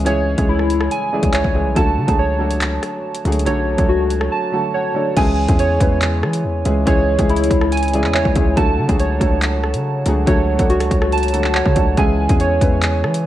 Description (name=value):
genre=hip hop, drill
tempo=141 BPM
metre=4/4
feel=half-time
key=C# phrygian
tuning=A4 = 441 Hz
part: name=dark baby grand piano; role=accompaniment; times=0.0-13.3 s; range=C#3 to F#5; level=-21 LUFS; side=equal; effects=low-pass filter
part: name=warbly lo-fi synth keys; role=arpeggios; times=0.0-13.3 s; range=E4 to A5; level=-20 LUFS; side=right 2 dB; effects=chorus, low-pass filter, digital delay
part: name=hard-hitting 808-style bass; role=bass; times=0.0-13.3 s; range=B1 to E3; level=-19 LUFS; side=equal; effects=none
part: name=drill drum kit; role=drums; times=0.1-13.2 s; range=crash cymbal, handclaps, hi-hat, kick drum, rim click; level=-19 LUFS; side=equal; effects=none
part: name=glass harmonica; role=sustained chords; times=5.2-13.3 s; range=E4 to F#5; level=-28 LUFS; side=left 1 dB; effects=none
room=light reverb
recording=none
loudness=-14 LUFS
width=side -13 dB against mid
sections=0.0-5.2 A section; 5.2-13.3 B section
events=break 4.3-5.2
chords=0.0 C#m; 1.8 D/C#; 5.2 C#m; 8.6 D/C#; 12.0 C#m